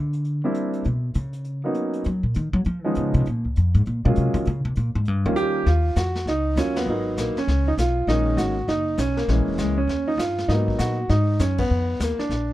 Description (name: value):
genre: jazz piano trio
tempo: 199 BPM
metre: 4/4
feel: swing 63% on 8ths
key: Eb minor from 5.7 s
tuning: A4 = 439 Hz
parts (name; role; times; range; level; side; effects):
- upright bass; bass; 0.0-12.5 s; Fb1 to F#3; -22 LUFS; equal; none
- vintage brush drum kit; drums; 0.1-12.5 s; brushed snare drum, hi-hat, kick drum, ride cymbal, snare drum; -33 LUFS; left 2 dB; none
- warm upright piano; melody; 0.4-12.5 s; D#3 to Bb4; -23 LUFS; right 1 dB; none
room: little or no reverb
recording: dark, warm production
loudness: -20 LUFS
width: side -15 dB against mid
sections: 0.0-5.7 A section; 5.7-12.5 B section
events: upright bass solo 0.0-5.7; band accent 6.7, 11.6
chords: 0.0 C9; 0.8 Bmaj9; 2.1 D#m/A#; 2.7 C#9; 3.3 F#maj9; 4.5 A#m9; 5.1 D#7; 5.7 Ebm9; 6.9 Abm9; 7.5 Db7; 8.1 Gb6; 9.3 Bbm7b5; 9.9 Eb; 10.5 Abm9; 11.7 Bmaj7#11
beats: 0.25 0.55 | 0.85 1.15 1.45 1.75 | 2.05 2.35 2.65 2.96 | 3.26 3.56 3.86 4.16 | 4.46 4.76 5.06 5.37 | 5.67 5.97 6.27 6.57 | 6.87 7.17 7.48 7.78 | 8.08 8.38 8.69 8.99 | 9.29 9.59 9.89 10.19 | 10.50 10.80 11.10 11.40 | 11.70 12.01 12.31